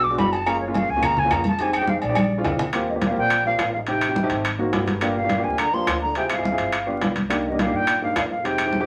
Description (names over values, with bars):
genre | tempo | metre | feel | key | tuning
Afro-Cuban jazz | 210 BPM | 4/4 | straight | Eb major | A4 = 439 Hz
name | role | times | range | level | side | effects
concert flute | melody | 0.0-8.9 s | Db5 to D6 | -26 LUFS | equal | none
warm upright piano | accompaniment | 0.0-8.9 s | G#3 to Ab4 | -28 LUFS | equal | none
upright bass | bass | 0.0-8.8 s | F#1 to G2 | -35 LUFS | equal | none
congas | percussion | 0.0-8.9 s | none | -30 LUFS | equal | none
timbales and agogo bells | percussion | 0.2-8.9 s | none | -30 LUFS | equal | none
claves | percussion | 0.5-8.7 s | none | -34 LUFS | equal | none
breathy trombone | second line | 2.9-8.9 s | G2 to F3 | -33 LUFS | equal | none
room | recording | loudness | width
wet studio ambience, RT60 0.5 s | vinyl crackle | -22 LUFS | mono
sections
0.0-2.7 A section; 2.7-8.9 B section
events
flute solo 0.0-2.7; drum fill 2.2-2.7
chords
0.5 Gbmaj9; 1.6 Fm7; 2.2 Bb7; 2.7 Eb69; 3.9 Am7b5; 4.5 Ab9; 5.0 Gm7; 6.2 Dm7b5; 6.7 G7; 7.3 Cm7